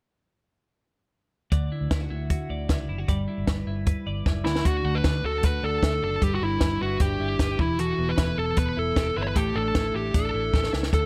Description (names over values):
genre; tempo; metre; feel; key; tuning
jangly indie pop; 153 BPM; 4/4; straight; D major; A4 = 441 Hz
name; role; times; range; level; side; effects
twelve-string electric guitar; arpeggios; 1.5-11.1 s; D3 to D5; -33 LUFS; equal; subtle chorus
vintage muted fingered electric bass; bass; 1.5-11.1 s; E1 to D2; -32 LUFS; equal; none
compact cocktail drum kit; drums; 1.5-11.0 s; hi-hat, kick drum, snare drum; -27 LUFS; equal; none
fuzz lead guitar; melody; 4.4-11.1 s; E4 to C#5; -29 LUFS; equal; distortion
room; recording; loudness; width
light reverb, studio reverb; none; -25 LUFS; mono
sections
1.5-4.7 A section; 4.7-11.1 B section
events
drum fill 4.3-4.7, 10.5-10.9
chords
1.5 Dadd9; 3.1 G6; 4.5 Dsus2; 4.7 D; 6.2 G6; 7.6 Esus4; 9.4 Asus4